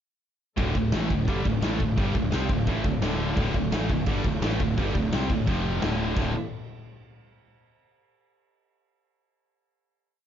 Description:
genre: heavy metal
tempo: 172 BPM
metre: 4/4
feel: straight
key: D minor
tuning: A4 = 440 Hz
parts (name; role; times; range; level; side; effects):
- warm symphonic string section; sustained chords; 0.6-6.3 s; F3 to F5; -40 LUFS; left 1 dB; none
- heavy high-gain guitar; riff; 0.6-6.3 s; D2 to C4; -30 LUFS; right 7 dB; distortion
- high-gain distorted guitar; riff; 0.6-6.3 s; D2 to C4; -32 LUFS; left 9 dB; distortion
- scooped high-gain guitar; riff; 0.6-6.3 s; D2 to C4; -34 LUFS; left 1 dB; distortion
- fuzz fingered electric bass; bass; 0.6-6.3 s; D1 to C2; -30 LUFS; equal; overdrive
- big rock drum kit; drums; 0.6-6.2 s; crash cymbal, kick drum, snare drum; -28 LUFS; left 1 dB; none
room: small room ambience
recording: dark, warm production, nothing above 7.5 kHz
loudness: -23 LUFS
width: side -9 dB against mid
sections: 0.6-6.2 riff; 6.2-7.6 final chord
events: none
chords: 0.6 Dm; 5.5 F5; 5.8 Dm; 6.2 D5

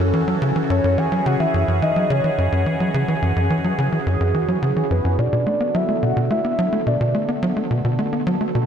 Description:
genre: ambient, sequencer-driven space music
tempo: 107 BPM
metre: 4/4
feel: straight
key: F# minor, B minor from 5.2 s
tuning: A4 = 440 Hz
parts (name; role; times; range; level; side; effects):
- phased analog pad; sustained chords; 0.0-8.7 s; D3 to A4; -24 LUFS; right 1 dB; phaser, chorus
- tight sequencer bass; riff; 0.0-8.7 s; F#2 to B3; -20 LUFS; equal; lush chorus, tape echo
- soft octave-layered synth lead; melody; 0.7-7.3 s; B4 to G#5; -24 LUFS; equal; chorus, tremolo, tape echo
room: moderate plate reverb, RT60 2.5 s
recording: echo-heavy mix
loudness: -17 LUFS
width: side -8 dB against mid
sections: 0.0-5.2 A section; 5.2-8.7 B section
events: none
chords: 0.0 F#m7; 5.2 Bm7

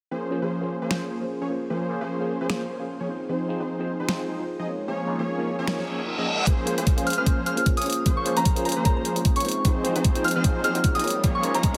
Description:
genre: future bass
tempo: 151 BPM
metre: 4/4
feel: swing 56% on 16ths, half-time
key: unclear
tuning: A4 = 440 Hz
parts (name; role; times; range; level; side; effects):
- ethereal airy pad; sustained chords; 1.3-11.8 s; Ab3 to Db5; -41 LUFS; equal; none
- big bright polysynth; riff; 0.1-11.8 s; F3 to Eb5; -30 LUFS; equal; sidechain pumping
- overdriven tine electric piano; accompaniment; 0.3-11.8 s; Bb3 to Eb5; -34 LUFS; equal; phaser, sidechain pumping
- dubstep drum kit; drums; 0.9-11.8 s; finger snaps, hi-hat, snare drum; -32 LUFS; equal; high-pass filter on snare, high-pass filter on hats
- reverse cymbal and riser; sound effects; 5.9-11.8 s; none; -36 LUFS; equal; none
- electronic kick drum; drums; 6.5-11.7 s; none; -24 LUFS; equal; none
- soft synth bell; melody; 7.1-11.7 s; Bb5 to F6; -29 LUFS; equal; chorus, sidechain pumping
room: light reverb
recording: none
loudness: -25 LUFS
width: mono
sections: 0.1-6.5 A section; 6.5-11.8 B section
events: reverse cymbal 5.9-6.5; build-up 6.5-11.8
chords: 0.1 Fm7; 4.9 Db6; 6.5 Fm7

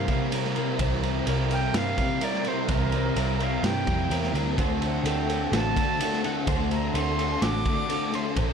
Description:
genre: rock, shoegaze and dream pop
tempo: 127 BPM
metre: 4/4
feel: straight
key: unclear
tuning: A4 = 440 Hz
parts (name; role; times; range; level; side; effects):
- bright reedy silver concert flute; melody; 0.0-8.4 s; Bb4 to D6; -32 LUFS; right 2 dB; slapback echo
- direct-recorded clean electric guitar; arpeggios; 0.0-8.5 s; F#4 to C5; -35 LUFS; left 9 dB; ensemble chorus, slapback echo
- overdriven electric guitar; riff; 0.0-8.5 s; Bb2 to Bb4; -30 LUFS; right 15 dB; reverse reverb
- thick fuzz guitar; riff; 0.0-8.5 s; Bb2 to D4; -29 LUFS; left 10 dB; distortion, ensemble chorus
- vintage muted picked electric bass; bass; 0.0-8.5 s; A1 to G2; -29 LUFS; right 1 dB; none
- raw garage drum kit; drums; 0.1-8.5 s; kick drum, ride cymbal, snare drum; -30 LUFS; right 1 dB; none
room: little or no reverb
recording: dark, warm production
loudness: -23 LUFS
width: side -6 dB against mid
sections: 0.0-8.5 A section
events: none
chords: 0.0 C7sus4; 4.6 D7

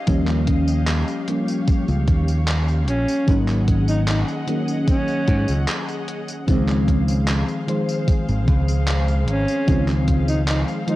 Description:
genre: vaporwave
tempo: 75 BPM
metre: 4/4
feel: straight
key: Db major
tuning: A4 = 440 Hz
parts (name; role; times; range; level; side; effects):
- clear symphonic string section; sustained chords; 0.0-11.0 s; G4 to Gb5; -33 LUFS; left 1 dB; cassette tape
- mellow FM electric piano; accompaniment; 0.1-11.0 s; Eb3 to C5; -23 LUFS; left 1 dB; ensemble chorus, vintage 12-bit sampler grit, cassette tape, analog delay
- modern bright fingered electric bass; bass; 0.1-10.6 s; Ab1 to Ab2; -20 LUFS; equal; none
- electronic kick drum; drums; 0.1-10.2 s; none; -19 LUFS; equal; overdrive
- gated 80s digital drum machine; drums; 0.1-11.0 s; handclaps, hi-hat, tambourine; -30 LUFS; equal; gated reverb, overdrive
- warm alto saxophone; melody; 2.9-11.0 s; Db4 to Eb4; -27 LUFS; equal; vintage 12-bit sampler grit, tape echo
room: digital ambience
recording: home recording on cassette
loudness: -18 LUFS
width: side -16 dB against mid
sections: 0.0-11.0 A section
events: none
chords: 0.0 Eb9; 3.3 Ab7sus4; 6.5 Dbmaj7

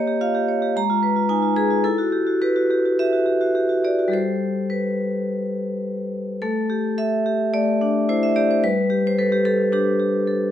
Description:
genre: classical, contemporary piece for solo vibraphone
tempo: 108 BPM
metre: 4/4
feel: rubato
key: A minor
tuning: A4 = 440 Hz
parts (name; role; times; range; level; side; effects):
- vibraphone with medium hard mallets; solo; 0.0-10.5 s; G3 to Bb5; -18 LUFS; equal; none
room: moderate recital hall reverb, RT60 1.3 s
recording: close, detailed microphones, faint mains hum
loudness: -18 LUFS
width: side -10 dB against mid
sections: 0.0-6.4 A section; 6.4-10.5 B section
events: none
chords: 0.0 Bbm6; 0.7 G#m6; 1.8 Emadd9; 4.1 Gadd9; 6.4 A7sus4; 8.6 Gsus2

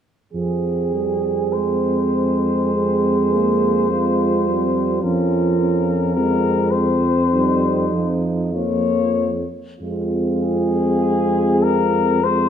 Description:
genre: classical, hymn-like piece for brass band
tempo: 46-54 BPM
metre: 4/4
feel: rubato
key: F minor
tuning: A4 = 436 Hz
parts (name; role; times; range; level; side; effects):
- warm flugelhorn; melody; 0.3-12.5 s; Ab4 to Db5; -23 LUFS; left 6 dB; none
- mellow French horn section; second line; 0.3-12.5 s; Eb4 to Ab4; -23 LUFS; right 8 dB; none
- dark trombone; accompaniment; 0.3-12.5 s; F3 to Ab3; -23 LUFS; right 2 dB; none
- mellow euphonium; accompaniment; 0.3-12.5 s; Bb3 to Db4; -23 LUFS; left 2 dB; none
- warm tuba; bass; 0.3-12.5 s; F2; -23 LUFS; left 1 dB; none
room: moderate recital hall reverb, RT60 1.4 s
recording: dark, warm production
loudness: -16 LUFS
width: side -8 dB against mid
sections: 0.3-9.8 A section; 9.8-12.5 B section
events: none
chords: 0.3 Fm; 5.0 Bbm/F; 9.8 Fm

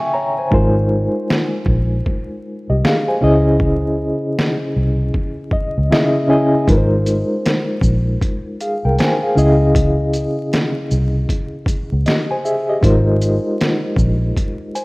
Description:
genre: lo-fi hip hop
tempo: 78 BPM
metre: 4/4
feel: swing 63% on 16ths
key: Ab major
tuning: A4 = 440 Hz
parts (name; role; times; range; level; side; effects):
- reed electric piano; accompaniment; 0.0-14.8 s; Db3 to Db6; -18 LUFS; equal; fast tremolo, low-pass filter
- vintage muted fingered electric bass; bass; 0.5-14.3 s; Ab1 to Db2; -16 LUFS; equal; none
- trip hop sampler-style drum kit; drums; 0.5-14.8 s; hi-hat, kick drum, shaker, snare drum; -19 LUFS; equal; overdrive
room: light reverb, digital ambience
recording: rough home demo mix, vinyl crackle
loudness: -14 LUFS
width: side -24 dB against mid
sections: 0.0-14.8 A section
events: break 0.0-6.7; reed electric piano fill 0.0-0.5, 5.1-6.7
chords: 0.0 Dbmadd9; 0.5 Ab69; 3.2 Dbmadd9; 6.7 Ab69; 9.4 Dbmadd9; 12.8 Ab69

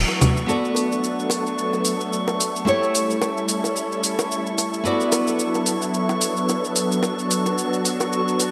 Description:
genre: sunset chillout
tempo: 110 BPM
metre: 4/4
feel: swing 56% on 16ths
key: D major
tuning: A4 = 440 Hz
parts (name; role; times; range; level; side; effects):
- nylon-string guitar; accompaniment; 0.0-8.5 s; F#3 to D5; -27 LUFS; equal; digital delay
- soft string machine; sustained chords; 0.0-8.5 s; E3 to A4; -26 LUFS; equal; phaser, ensemble chorus
- drifting glass-harmonics texture; texture; 0.0-8.5 s; C#6; -32 LUFS; equal; chorus, built-in reverb
- electronic shaker, hi-hat and congas; drums; 0.1-8.5 s; none; -26 LUFS; equal; studio ambience
- bongos; percussion; 0.1-8.5 s; none; -31 LUFS; equal; none
room: wet lush hall reverb, RT60 2.1 s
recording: bright 1980s-style digital production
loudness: -22 LUFS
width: mono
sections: 0.5-8.5 A section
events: band accent 0.0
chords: 0.5 Bm7; 2.7 A7; 4.9 D69

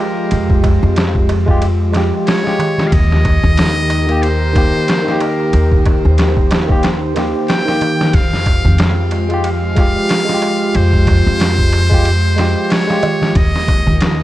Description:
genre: trip hop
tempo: 92 BPM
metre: 4/4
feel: swing 57% on 16ths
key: F minor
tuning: A4 = 441 Hz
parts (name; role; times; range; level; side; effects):
- trumpet with metal mute; melody; 0.0-14.2 s; Bb4 to G5; -21 LUFS; equal; tape echo
- barky tine electric piano; accompaniment; 0.0-13.4 s; Eb3 to G4; -19 LUFS; equal; overdrive, tremolo, tape echo
- warbly tape-like pad; sustained chords; 0.0-14.2 s; Eb3 to C5; -21 LUFS; right 1 dB; chorus, built-in reverb
- darbuka; percussion; 0.2-14.2 s; none; -24 LUFS; right 2 dB; none
- upright bass; bass; 0.3-14.2 s; Eb2 to F2; -15 LUFS; equal; tube saturation
- trip hop sampler-style drum kit; drums; 0.3-14.2 s; hi-hat, kick drum, ride cymbal, snare drum; -16 LUFS; equal; vintage 12-bit sampler grit
room: digital ambience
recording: dark, warm production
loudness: -11 LUFS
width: side -15 dB against mid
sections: 0.0-14.2 A section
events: none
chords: 0.0 Fmadd9; 2.9 Eb; 8.1 Fmadd9; 13.4 Eb

